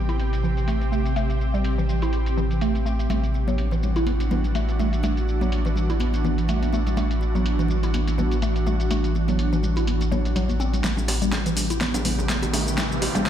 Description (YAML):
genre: afro house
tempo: 124 BPM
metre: 4/4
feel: swing 56% on 16ths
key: A dorian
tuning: A4 = 440 Hz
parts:
  - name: ethereal airy pad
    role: sustained chords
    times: 0.0-13.3 s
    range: C3 to G4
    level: -28 LUFS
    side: right 2 dB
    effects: ensemble chorus, built-in reverb, sidechain pumping
  - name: warm sub bass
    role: bass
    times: 0.0-13.3 s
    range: A1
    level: -24 LUFS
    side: equal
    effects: sidechain pumping
  - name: mallet-like synth pluck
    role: arpeggios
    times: 0.1-13.3 s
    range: E3 to E4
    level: -28 LUFS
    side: right 1 dB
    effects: chorus, phaser, sidechain pumping, digital delay
  - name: deep house drum kit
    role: drums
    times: 0.1-13.3 s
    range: hi-hat, shaker, snare drum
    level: -31 LUFS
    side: equal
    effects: low-pass filter on hats, small room ambience, low-pass filter on perc, low-pass filter on snare
  - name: congas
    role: percussion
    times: 3.1-13.2 s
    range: none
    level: -31 LUFS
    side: left 2 dB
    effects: none
  - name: electronic kick drum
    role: drums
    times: 10.8-13.3 s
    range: none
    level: -37 LUFS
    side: equal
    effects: none
  - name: riser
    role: sound effects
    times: 11.4-13.3 s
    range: none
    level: -31 LUFS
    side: right 1 dB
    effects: none
  - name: bongos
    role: percussion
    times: 11.0-13.2 s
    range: none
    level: -31 LUFS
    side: right 1 dB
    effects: none
room: light reverb, digital ambience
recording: played on a big sound system in a bare room, large studio reverb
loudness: -21 LUFS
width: side -10 dB against mid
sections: 0.0-10.8 A section; 10.8-13.3 B section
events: filter sweep on synth pluck 0.0-10.8; build-up 10.8-13.3; drum fill 10.8-13.3; riser 11.4-13.3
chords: 0.0 Am7; 3.1 Dadd9/A; 10.8 Am9